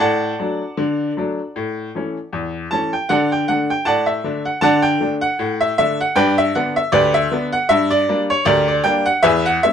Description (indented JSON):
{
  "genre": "ragtime piano",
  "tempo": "78 BPM",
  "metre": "2/4",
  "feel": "swing 56% on 16ths",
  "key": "D major",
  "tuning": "A4 = 440 Hz",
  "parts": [
    { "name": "bright upright piano", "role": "solo", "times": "0.0-9.7 s", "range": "D2 to A5", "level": "-16 LUFS", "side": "equal", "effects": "none" }
  ],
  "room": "wet studio reverb, RT60 0.5 s",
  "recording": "none",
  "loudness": "-16 LUFS",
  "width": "side -8 dB against mid",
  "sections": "0.0-9.7 A section",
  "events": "none",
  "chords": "0.0 D/A; 1.5 A; 3.1 D; 6.2 G; 7.7 Gm"
}